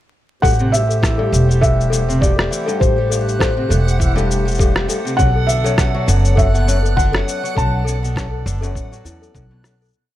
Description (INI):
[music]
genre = folktronica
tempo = 101 BPM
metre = 4/4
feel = swing 56% on 16ths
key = A dorian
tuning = A4 = 441 Hz
[part]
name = felt-muted upright piano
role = melody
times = 0.4-9.3 s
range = A4 to A5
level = -22 LUFS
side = equal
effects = none
[part]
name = small celesta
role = second line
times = 0.4-10.0 s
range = E4 to A4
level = -27 LUFS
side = left 4 dB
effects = ping-pong delay
[part]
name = pedal harmonium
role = sustained chords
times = 0.4-9.9 s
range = A3 to D5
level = -29 LUFS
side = right 2 dB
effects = none
[part]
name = fingerpicked twelve-string acoustic guitar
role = arpeggios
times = 0.4-9.7 s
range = F#2 to G3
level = -24 LUFS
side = left 1 dB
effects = low-pass filter, ping-pong delay
[part]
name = upright bass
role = bass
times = 0.4-9.9 s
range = E1 to E2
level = -17 LUFS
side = equal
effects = none
[part]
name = electronic cabasa and rim click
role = drums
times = 0.4-9.9 s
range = none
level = -23 LUFS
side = left 1 dB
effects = none
[part]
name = electronic kick drum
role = drums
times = 0.4-9.5 s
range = none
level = -18 LUFS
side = equal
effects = none
[part]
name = backwards swelling texture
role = texture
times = 1.5-10.0 s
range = F#5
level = -30 LUFS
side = right 3 dB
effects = built-in reverb
[sound]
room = small room ambience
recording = vinyl crackle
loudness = -14 LUFS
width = side -13 dB against mid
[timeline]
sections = 0.4-9.9 groove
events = fade-out 6.8-9.9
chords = 0.4 Am7; 5.2 Bm7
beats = | 0.43 1.03 1.62 2.22 | 2.81 3.41 4.00 4.59 | 5.19 5.78 6.38 6.97 | 7.56 8.16 8.75 9.35